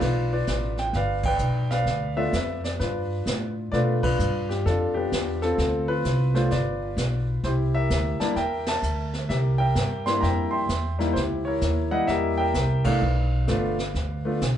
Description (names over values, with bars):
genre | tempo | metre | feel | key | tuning
jazz piano trio | 129 BPM | 4/4 | swing 65% on 8ths | G mixolydian | A4 = 440 Hz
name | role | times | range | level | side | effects
warm concert grand piano | melody | 0.0-14.4 s | G3 to C6 | -25 LUFS | left 1 dB | none
upright bass | bass | 0.0-14.6 s | G1 to B2 | -25 LUFS | equal | none
jazz brush drum kit | drums | 0.0-14.6 s | brushed snare drum, crash cymbal, hi-hat, kick drum, ride cymbal, snare drum | -32 LUFS | right 1 dB | none
room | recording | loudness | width
wet club reverb, RT60 0.8 s | heard from further back in the room, nothing above 10.4 kHz | -22 LUFS | side -10 dB against mid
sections
0.0-14.6 A section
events
band accent 1.2, 4.0, 8.6, 12.8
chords
0.0 G7; 5.6 Dm7; 6.5 G7; 7.4 C7; 11.2 C#dim7; 13.0 G7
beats
| 0.01 0.47 0.94 1.40 | 1.86 2.33 2.79 3.25 | 3.72 4.18 4.65 5.11 | 5.58 6.04 6.51 6.97 | 7.44 7.90 8.37 8.83 | 9.30 9.76 10.23 10.69 | 11.16 11.62 12.09 12.55 | 13.02 13.48 13.95 14.41